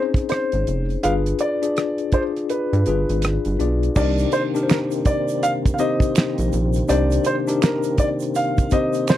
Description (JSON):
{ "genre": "R&B, neo-soul", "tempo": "82 BPM", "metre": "4/4", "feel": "swing 61% on 16ths", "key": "C minor from 4.0 s", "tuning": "A4 = 440 Hz", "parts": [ { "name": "mellow tine electric piano", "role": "accompaniment", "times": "0.0-9.2 s", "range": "C4 to D5", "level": "-23 LUFS", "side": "left 5 dB", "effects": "medium stereo tremolo" }, { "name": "damped 70s drum kit", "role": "drums", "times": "0.1-9.2 s", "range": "crash cymbal, hi-hat, kick drum, rim click, snare drum", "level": "-21 LUFS", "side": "right 1 dB", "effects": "none" }, { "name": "warm grand piano", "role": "melody", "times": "0.3-9.2 s", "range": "Bb4 to F5", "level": "-24 LUFS", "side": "right 1 dB", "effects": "slapback echo" }, { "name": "rubbery square bass", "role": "bass", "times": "0.5-7.2 s", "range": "F1 to G2", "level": "-21 LUFS", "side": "right 1 dB", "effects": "none" }, { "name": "percussive tonewheel organ", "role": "sustained chords", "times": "4.0-9.2 s", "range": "C3 to C4", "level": "-28 LUFS", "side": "right 4 dB", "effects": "slow rotary speaker, overdrive, chorus vibrato" }, { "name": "egg shaker and finger snaps", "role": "percussion", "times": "4.0-9.2 s", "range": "none", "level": "-36 LUFS", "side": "right 14 dB", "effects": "none" } ], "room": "light reverb", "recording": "dry, close 1970s-style studio recording", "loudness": "-18 LUFS", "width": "side -12 dB against mid", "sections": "0.0-4.0 A section; 4.0-9.2 B section", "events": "kick muted 2.5-4.0", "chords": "0.0 Bbm11 (rootless); 1.0 G7b9; 4.0 Cm9" }